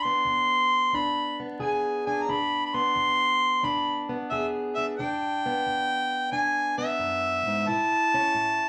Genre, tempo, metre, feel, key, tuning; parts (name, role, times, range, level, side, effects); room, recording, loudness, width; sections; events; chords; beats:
acoustic country blues, solo or duo; 89 BPM; 4/4; swing 67% on 8ths; A4 = 440 Hz
warm harmonica; melody; 0.0-8.7 s; E5 to C6; -26 LUFS; equal
fingerpicked plugged-in steel-string acoustic guitar; accompaniment; 0.0-8.7 s; E2 to G#4; -34 LUFS; equal
wet studio ambience, RT60 0.5 s; vinyl crackle; -26 LUFS; mono
0.0-8.7 A section
0.0 E7; 7.7 A
0.24 0.92 1.59 | 2.27 2.94 3.62 4.29 | 4.97 5.64 6.31 6.99 | 7.66 8.34